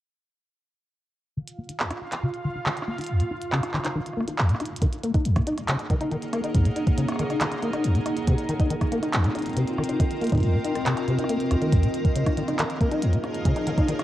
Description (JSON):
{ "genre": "IDM", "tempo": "139 BPM", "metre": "4/4", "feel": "straight", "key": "unclear", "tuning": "A4 = 441 Hz", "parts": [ { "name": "deep acid bass", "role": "arpeggios", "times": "1.4-13.9 s", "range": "Eb2 to Eb4", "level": "-25 LUFS", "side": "left 1 dB", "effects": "ensemble chorus, cassette tape, digital delay" }, { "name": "bubbling stepped-filter texture", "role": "texture", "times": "1.6-4.8, 11.9-14.0 s", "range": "F3 to F5", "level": "-36 LUFS", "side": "right 3 dB", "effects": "chorus, built-in reverb" }, { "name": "glitchy drum kit", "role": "drums", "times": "1.5-14.0 s", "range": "handclaps, hi-hat, rim click", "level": "-31 LUFS", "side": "right 1 dB", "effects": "digital delay" }, { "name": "icy glass pad", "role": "sustained chords", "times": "5.6-14.0 s", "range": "Bb3 to G5", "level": "-28 LUFS", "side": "equal", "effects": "chorus, built-in reverb, vintage 12-bit sampler grit" }, { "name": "electronic kick drum", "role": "drums", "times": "4.8-13.9 s", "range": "none", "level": "-22 LUFS", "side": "equal", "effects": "none" } ], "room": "moderate plate reverb, RT60 2.5 s", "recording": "worn, warbling old tape, cassette tape, warbly pitch drift", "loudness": "-22 LUFS", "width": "side -14 dB against mid", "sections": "1.4-4.8 A section; 4.8-14.0 B section", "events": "filter sweep on acid bass 1.4-4.8; kick drops out 3.1-4.8; drum fill 4.6", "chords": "1.4 Eb5; 4.8 Ebm7; 8.3 Cm; 11.7 Eb5" }